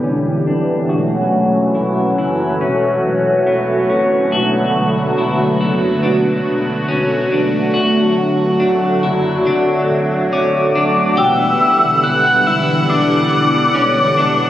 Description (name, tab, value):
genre	dream pop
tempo	70 BPM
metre	4/4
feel	straight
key	E dorian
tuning	A4 = 441 Hz
part	phased analog pad	sustained chords	0.0-14.5 s	D3 to F#5	-15 LUFS	equal	phaser, chorus, low-pass filter
part	clean electric guitar	arpeggios	0.0-14.5 s	B3 to G4	-20 LUFS	left 2 dB	lush chorus, low-pass filter, digital delay
part	saturated sub bass	bass	0.0-14.5 s	D1 to F#1	-25 LUFS	equal	none
part	soft octave-layered synth lead	melody	10.3-14.5 s	D6 to F#6	-15 LUFS	left 1 dB	chorus, digital delay
room	moderate huge ambient reverb, RT60 8.4 s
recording	recorded on a phone in the room, club reverb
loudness	-13 LUFS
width	side -12 dB against mid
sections	0.0-11.2 A section; 11.2-14.5 B section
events	filter sweep 0.0-11.2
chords	0.0 Em7; 0.9 F#m7/E; 4.3 Bm7/E; 7.8 Dmaj7; 11.2 Em9